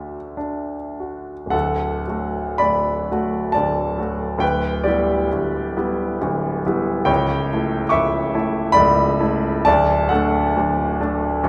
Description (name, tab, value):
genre	classical, romantic nocturne for solo piano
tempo	49-73 BPM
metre	3/4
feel	rubato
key	D major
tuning	A4 = 440 Hz
part	clear grand piano	solo	0.0-11.5 s	C#1 to D6	-20 LUFS	equal	none
room	moderate recital hall reverb, RT60 1.7 s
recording	none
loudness	-20 LUFS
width	mono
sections	0.0-1.5 A section; 1.5-11.5 B section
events	none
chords	0.0 D; 4.4 Em7/D; 7.1 A7/C#; 9.7 D